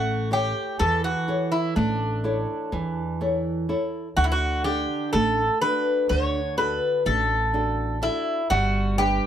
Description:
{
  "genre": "greek folk, Greek bouzouki band",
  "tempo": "124 BPM (eighths)",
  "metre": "9/8",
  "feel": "straight",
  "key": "D major",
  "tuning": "A4 = 442 Hz",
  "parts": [
    { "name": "Greek bouzouki", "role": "melody", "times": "0.0-9.3 s", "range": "D4 to C#5", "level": "-24 LUFS", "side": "equal", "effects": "none" },
    { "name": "flamenco guitar", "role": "accompaniment", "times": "0.0-9.3 s", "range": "D3 to F#5", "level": "-27 LUFS", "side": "right 1 dB", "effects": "none" },
    { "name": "upright bass", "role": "bass", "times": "0.0-9.2 s", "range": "G1 to E2", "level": "-27 LUFS", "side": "equal", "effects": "none" }
  ],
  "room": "light reverb",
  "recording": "none",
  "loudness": "-22 LUFS",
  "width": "side -10 dB against mid",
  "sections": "0.0-9.3 A section",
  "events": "none",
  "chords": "0.0 A; 4.2 D; 8.5 G"
}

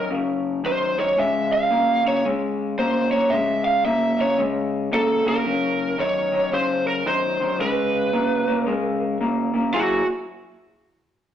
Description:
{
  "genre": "blues",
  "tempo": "112 BPM",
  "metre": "4/4",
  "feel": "swing 64% on 8ths",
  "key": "F# mixolydian",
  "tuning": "A4 = 440 Hz",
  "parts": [
    { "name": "lead guitar through a small cranked amp", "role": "melody", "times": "0.0-10.1 s", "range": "F#4 to E#5", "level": "-21 LUFS", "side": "right 1 dB", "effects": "overdrive" },
    { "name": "electric guitar through a small old amp", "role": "riff", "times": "0.0-10.0 s", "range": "F#2 to G#4", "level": "-23 LUFS", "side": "left 2 dB", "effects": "none" }
  ],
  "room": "wet stone room reverb, RT60 1.3 s",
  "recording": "rough rehearsal-room recording, tube saturation",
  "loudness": "-19 LUFS",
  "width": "side -10 dB against mid",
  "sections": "0.0-9.7 A section; 9.7-11.3 B section",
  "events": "none",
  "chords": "0.0 F#5; 1.2 C#5; 5.5 F#; 7.6 C#5; 9.7 F#9"
}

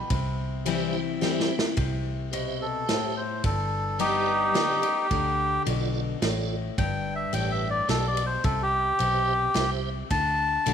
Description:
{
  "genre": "honky-tonk and classic country",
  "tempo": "108 BPM",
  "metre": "3/4",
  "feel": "straight",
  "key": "C major",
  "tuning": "A4 = 439 Hz",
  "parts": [
    { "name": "bright upright piano", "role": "second line", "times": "0.0-1.2 s", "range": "G5 to B5", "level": "-39 LUFS", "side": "right 2 dB", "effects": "none" },
    { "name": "picked steel-string acoustic guitar", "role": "accompaniment", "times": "0.0-10.7 s", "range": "G2 to G4", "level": "-31 LUFS", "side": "left 8 dB", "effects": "none" },
    { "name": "vintage muted fingered electric bass", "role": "bass", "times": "0.1-10.7 s", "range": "G1 to D2", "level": "-31 LUFS", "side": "right 1 dB", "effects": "none" },
    { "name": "natural country drum kit", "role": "drums", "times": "0.1-10.7 s", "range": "kick drum, ride cymbal, snare drum", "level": "-32 LUFS", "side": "right 2 dB", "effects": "none" },
    { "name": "tonewheel organ", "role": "accompaniment", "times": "0.7-10.7 s", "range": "F4 to E5", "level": "-36 LUFS", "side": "right 12 dB", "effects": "chorus vibrato, fast rotary speaker" },
    { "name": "melodica", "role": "melody", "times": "2.6-10.7 s", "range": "Eb4 to A5", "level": "-25 LUFS", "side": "equal", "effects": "none" }
  ],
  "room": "moderate echo chamber reverb, RT60 1.8 s",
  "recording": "1960s-style stereo with parts hard left and right",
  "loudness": "-24 LUFS",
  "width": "side -8 dB against mid",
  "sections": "0.0-1.8 A section; 1.8-10.7 A section",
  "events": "upright piano solo 0.0-1.8; drum fill 1.2-1.8; melodica solo 1.8-10.7",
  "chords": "0.1 C; 3.4 G; 5.1 Dm; 6.8 G; 8.4 C; 10.1 D"
}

